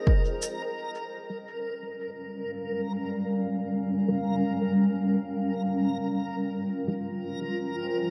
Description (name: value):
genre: ambient dub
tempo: free time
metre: none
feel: none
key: unclear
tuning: A4 = 440 Hz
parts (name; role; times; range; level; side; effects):
- granular cloud pad; sustained chords; 0.0-8.1 s; G3 to Ab5; -30 LUFS; equal; built-in reverb, vintage 12-bit sampler grit
- backwards swelling texture; texture; 0.0-8.1 s; Bb4; -38 LUFS; equal; built-in reverb
- cabasa; drums; 0.4-0.6 s; none; -41 LUFS; equal; low-pass filter on perc, low-pass filter on snare, low-pass filter on room, dub echo
- filtered dub chord stab; stabs; 1.3-7.0 s; F3 to Bb4; -38 LUFS; equal; none
room: moderate concert hall reverb, RT60 2.1 s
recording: dark, warm production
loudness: -29 LUFS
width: mono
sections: 0.8-8.1 A section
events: none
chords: 0.0 Fm9; 0.8 Gm7b5; 6.3 Fm9